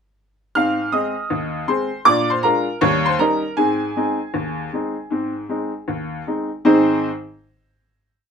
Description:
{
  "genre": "ragtime piano",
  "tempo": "79 BPM",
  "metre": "2/4",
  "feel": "swing 60% on 16ths",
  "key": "Ab major",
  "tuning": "A4 = 440 Hz",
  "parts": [
    { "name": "bright upright piano", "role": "solo", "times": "0.6-7.1 s", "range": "Eb2 to F6", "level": "-17 LUFS", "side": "equal", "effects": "none" }
  ],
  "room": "wet club reverb, RT60 0.5 s",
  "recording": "minimal, uncompressed stereo recording, faint mains hum",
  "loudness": "-18 LUFS",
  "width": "side -6 dB against mid",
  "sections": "0.6-6.6 A section; 6.6-8.2 final chord",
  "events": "none",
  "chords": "0.6 Ab; 2.1 Bb7; 2.8 Eb7; 3.6 Ab"
}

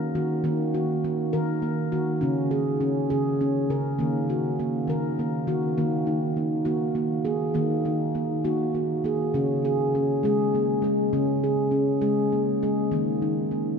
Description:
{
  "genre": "world meditative, meditative tuned percussion",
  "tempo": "67 BPM (dotted quarters)",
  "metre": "6/8",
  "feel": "straight",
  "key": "Eb minor",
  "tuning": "A4 = 440 Hz",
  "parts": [
    { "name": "handpan", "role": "solo", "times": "0.0-13.8 s", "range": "Db3 to Bb4", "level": "-22 LUFS", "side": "equal", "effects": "ping-pong delay" }
  ],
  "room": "wet cathedral reverb, RT60 6.5 s",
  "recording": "in a vast, echoing space",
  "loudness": "-22 LUFS",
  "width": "side -6 dB against mid",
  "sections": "0.0-5.8 A section; 5.8-13.8 B section",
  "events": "none",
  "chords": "0.0 Ebm; 2.2 Db5; 4.0 Ebm; 9.3 Db5; 12.9 Eb5"
}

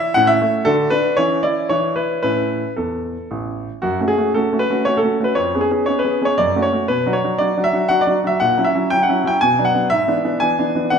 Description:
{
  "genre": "classical-period piano sonatina",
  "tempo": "118 BPM",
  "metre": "3/4",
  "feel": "straight",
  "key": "A major, F# minor from 3.8 s",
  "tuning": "A4 = 442 Hz",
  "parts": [
    { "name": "clear grand piano", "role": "solo", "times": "0.0-11.0 s", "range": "A1 to G#5", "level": "-15 LUFS", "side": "equal", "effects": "none" }
  ],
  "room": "moderate recital hall reverb, RT60 1.6 s",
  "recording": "minimal, uncompressed stereo recording",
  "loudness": "-15 LUFS",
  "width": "side -6 dB against mid",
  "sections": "0.0-3.8 A section; 3.8-11.0 B section",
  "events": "none",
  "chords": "0.2 A; 0.7 D; 1.2 C#m/E; 1.7 E5; 2.2 A; 3.8 F#m; 5.4 C#7/E#; 6.4 F#m; 6.9 Bm; 8.4 F#7/A#; 9.4 Bm; 9.9 E7/G#"
}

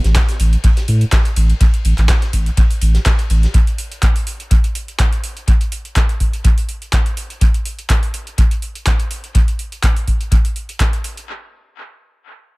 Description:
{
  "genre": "acid house",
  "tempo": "124 BPM",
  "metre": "4/4",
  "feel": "swing 54% on 16ths",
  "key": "unclear",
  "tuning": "A4 = 441 Hz",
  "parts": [
    { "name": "saturated sub bass", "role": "bass", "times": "0.0-3.5 s", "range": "A1 to A2", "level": "-12 LUFS", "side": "equal", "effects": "tube saturation, sidechain pumping" },
    { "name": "booming analog drum machine", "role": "drums", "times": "0.0-11.3 s", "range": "handclaps, hi-hat", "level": "-24 LUFS", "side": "equal", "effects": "dub echo" },
    { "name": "warm soul drum kit", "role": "drums", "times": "0.0-3.5 s", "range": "ride cymbal, snare drum", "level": "-32 LUFS", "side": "left 2 dB", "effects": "sidechain pumping on cymbals, high-pass filter on cymbals, high-pass filter on snare, high-pass filter on room" },
    { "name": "electronic kick drum", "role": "drums", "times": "0.2-10.9 s", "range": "none", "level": "-14 LUFS", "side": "equal", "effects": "none" }
  ],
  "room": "small room ambience",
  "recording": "echo-heavy mix",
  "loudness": "-14 LUFS",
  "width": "side -25 dB against mid",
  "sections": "0.0-11.3 A section",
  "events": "none",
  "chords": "none"
}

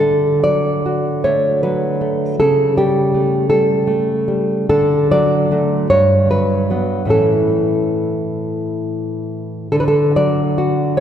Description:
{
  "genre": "romantic piece for solo classical guitar",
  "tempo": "43-56 BPM (dotted quarters)",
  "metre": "6/8",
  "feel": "rubato",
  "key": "D major",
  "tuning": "A4 = 440 Hz",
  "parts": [
    { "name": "nylon-string guitar", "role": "solo", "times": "0.0-11.0 s", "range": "G2 to D5", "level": "-14 LUFS", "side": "equal", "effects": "none" }
  ],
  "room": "wet church reverb, RT60 3.1 s",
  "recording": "recorded in a church or concert hall",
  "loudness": "-14 LUFS",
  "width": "side -9 dB against mid",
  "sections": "0.0-11.0 A section",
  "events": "none",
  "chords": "0.0 D; 2.4 A7/C#; 4.7 D; 5.9 Gmaj7; 7.1 A; 9.7 D"
}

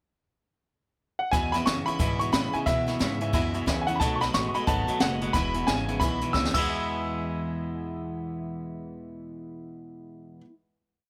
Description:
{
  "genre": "rockabilly",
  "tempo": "180 BPM",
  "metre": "4/4",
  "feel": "swing 62% on 8ths",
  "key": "E major",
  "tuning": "A4 = 440 Hz",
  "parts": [
    { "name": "clear upright piano", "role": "melody", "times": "1.2-10.4 s", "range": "E5 to E6", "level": "-31 LUFS", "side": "equal", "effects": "none" },
    { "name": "honky-tonk upright piano", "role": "accompaniment", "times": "1.3-10.4 s", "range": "D#5 to C#6", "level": "-41 LUFS", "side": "equal", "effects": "none" },
    { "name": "picked steel-string acoustic guitar", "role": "accompaniment", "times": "1.3-10.5 s", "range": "E2 to F#4", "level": "-38 LUFS", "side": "equal", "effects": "none" },
    { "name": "twangy electric guitar", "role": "riff", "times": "1.3-10.5 s", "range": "E2 to G#4", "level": "-35 LUFS", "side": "equal", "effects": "spring reverb" },
    { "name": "upright bass", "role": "bass", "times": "1.3-10.4 s", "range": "E1 to B2", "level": "-36 LUFS", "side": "equal", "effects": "none" },
    { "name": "jazz brush drum kit", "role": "drums", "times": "1.3-6.6 s", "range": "crash cymbal, hi-hat, kick drum, snare drum", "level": "-31 LUFS", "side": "equal", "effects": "none" }
  ],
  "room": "little or no reverb",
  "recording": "none",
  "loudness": "-27 LUFS",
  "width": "mono",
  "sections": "0.0-1.3 pickup bar; 1.3-6.7 A section; 6.7-9.3 final hit",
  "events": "drum fill 6.3-6.7",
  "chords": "0.0 N.C.; 1.3 E; 4.0 B7; 5.3 E"
}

